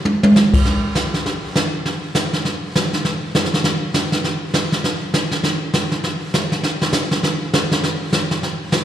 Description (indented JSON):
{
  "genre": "jazz",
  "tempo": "201 BPM",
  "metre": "4/4",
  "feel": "swing 60% on 8ths",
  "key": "none",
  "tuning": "none",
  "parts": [
    { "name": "jazz brush drum kit", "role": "drums", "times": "0.1-8.8 s", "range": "brushed snare drum, crash cymbal, hi-hat, kick drum, snare drum, toms", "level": "-16 LUFS", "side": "equal", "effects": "slapback echo" }
  ],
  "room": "wet club reverb, RT60 0.7 s",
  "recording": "live gig heard through the venue's PA, recital hall reverb",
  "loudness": "-16 LUFS",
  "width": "side -10 dB against mid",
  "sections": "0.7-8.8 A section",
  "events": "drum fill 0.1-0.4",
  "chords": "none",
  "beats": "0.05 0.35 | 0.65 0.95 1.25 1.55 | 1.85 2.15 2.44 2.75 | 3.04 3.34 3.64 3.94 | 4.24 4.54 4.84 5.14 | 5.44 5.74 6.04 6.33 | 6.63 6.93 7.23 7.53 | 7.83 8.12 8.42 8.72"
}